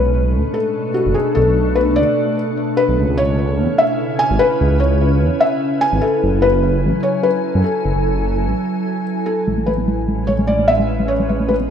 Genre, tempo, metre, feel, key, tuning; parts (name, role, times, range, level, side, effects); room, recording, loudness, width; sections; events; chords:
IDM; 148 BPM; 4/4; straight; A major; A4 = 442 Hz
felt-muted upright piano; melody; 0.0-11.5 s; F#4 to G#5; -18 LUFS; left 1 dB; ping-pong delay
glassy FM pad; sustained chords; 0.0-11.7 s; A2 to G#5; -20 LUFS; left 1 dB; ensemble chorus, built-in reverb, vintage 12-bit sampler grit
dark detuned saw bass; bass; 0.0-11.7 s; F#1 to F#2; -18 LUFS; right 1 dB
deep acid bass; arpeggios; 9.5-11.7 s; G#3 to B3; -21 LUFS; equal; digital delay
light reverb; rough home demo mix; -14 LUFS; side -8 dB against mid
0.0-9.5 A section; 9.5-11.7 B section
break 8.7-9.5; filter sweep on ambient pad 9.5-11.7; filter sweep on acid bass 9.5-11.7
0.0 Bm7; 3.0 C#m7; 6.2 F#m9; 9.5 Amaj9